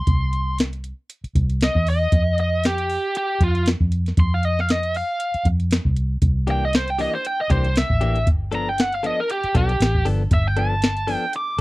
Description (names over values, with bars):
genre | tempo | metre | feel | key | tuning
straight-eighth soul blues | 117 BPM | 4/4 | swing 56% on 16ths | unclear | A4 = 439 Hz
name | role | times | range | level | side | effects
biting lead guitar | melody | 0.0-11.6 s | F4 to D6 | -23 LUFS | equal | overdrive
vintage muted fingered electric bass | bass | 0.1-11.6 s | G1 to F2 | -21 LUFS | equal | none
soft vintage rhythm box | drums | 0.1-11.6 s | hi-hat, kick drum, snare drum | -21 LUFS | equal | none
direct-recorded clean electric guitar | stabs | 6.5-11.6 s | E3 to A4 | -29 LUFS | left 5 dB | spring reverb
room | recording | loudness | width
little or no reverb | dry, close 1970s-style studio recording | -18 LUFS | side -20 dB against mid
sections
0.0-11.6 A section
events
none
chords
0.0 C; 2.1 N.C.; 6.2 C9; 8.3 G9